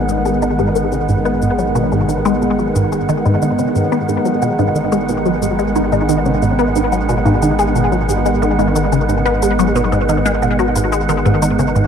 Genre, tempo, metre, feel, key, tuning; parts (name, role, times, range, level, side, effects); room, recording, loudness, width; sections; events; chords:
ambient, sequencer-driven space music; 90 BPM; 4/4; straight; G# minor; A4 = 436 Hz
sweeping resonant pad; sustained chords; 0.0-11.9 s; D#3 to G#4; -18 LUFS; right 1 dB; chorus
round analog bass; bass; 0.0-11.9 s; G#1; -23 LUFS; equal; tube saturation
wind-like tuned noise texture; texture; 0.0-11.9 s; F#5; -25 LUFS; right 2 dB; built-in reverb
resonant blip pluck; riff; 0.1-11.9 s; G#2 to B3; -16 LUFS; equal; phaser, analog chorus, tape echo
shaker and bongos; percussion; 0.1-11.9 s; -32 LUFS; left 6 dB; tape echo
moderate plate reverb, RT60 2.7 s; dark, warm production; -13 LUFS; side -7 dB against mid
0.0-11.9 A section
fade-in on drum 0.0-11.9; filter sweep on synth arpeggio sound 0.0-11.9
0.0 G#m